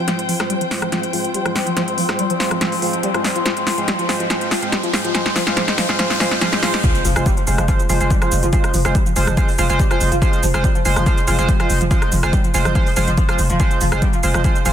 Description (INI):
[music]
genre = driving peak-time techno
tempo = 142 BPM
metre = 4/4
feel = straight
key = F minor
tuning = A4 = 438 Hz
[part]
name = overtone-sweeping drone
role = drone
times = 0.0-6.9 s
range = F3 to C4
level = -27 LUFS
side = left 2 dB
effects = chorus, built-in reverb, sidechain pumping
[part]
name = dark chamber string section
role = texture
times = 0.0-6.8 s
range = F4 to G5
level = -27 LUFS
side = left 1 dB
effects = sidechain pumping
[part]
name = overdriven synth lead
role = riff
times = 0.1-14.7 s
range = F3 to G3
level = -24 LUFS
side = equal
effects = lush chorus, vintage 12-bit sampler grit, sidechain pumping, tape echo
[part]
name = sync-sweep polysynth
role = stabs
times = 0.1-14.7 s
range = Ab3 to C5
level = -22 LUFS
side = right 2 dB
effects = chorus, sidechain pumping, digital delay
[part]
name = techno drum kit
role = drums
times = 0.1-14.7 s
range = hi-hat, rim click, shaker, snare drum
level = -22 LUFS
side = left 1 dB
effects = sidechain pumping on hats, sidechain pumping on perc
[part]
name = riser and impact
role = sound effects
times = 1.7-8.5 s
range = none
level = -27 LUFS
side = left 1 dB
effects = none
[part]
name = electronic kick drum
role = drums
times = 6.8-14.5 s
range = none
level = -18 LUFS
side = equal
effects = none
[part]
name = growling 808-style bass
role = bass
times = 7.0-14.7 s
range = F1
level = -19 LUFS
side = equal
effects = overdrive, sidechain pumping, low-pass filter
[sound]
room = light reverb, digital ambience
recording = dense, heavily limited modern master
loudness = -15 LUFS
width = side -10 dB against mid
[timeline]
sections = 0.1-6.8 A section; 6.8-14.7 B section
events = build-up 0.1-6.8; drum fill 0.1-6.8; filter sweep on analog synth lead 0.1-6.8; filter sweep on analog polysynth 0.1-6.8; riser 1.7-6.8; drop 6.8-14.7; impact 6.8-8.5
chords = 0.1 Fm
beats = | 0.08 0.50 0.92 1.34 | 1.77 2.19 2.61 3.04 | 3.46 3.88 4.30 4.72 | 5.15 5.57 5.99 6.42 | 6.84 7.26 7.68 8.11 | 8.53 8.95 9.37 9.79 | 10.22 10.64 11.06 11.49 | 11.91 12.33 12.75 13.18 | 13.60 14.02 14.44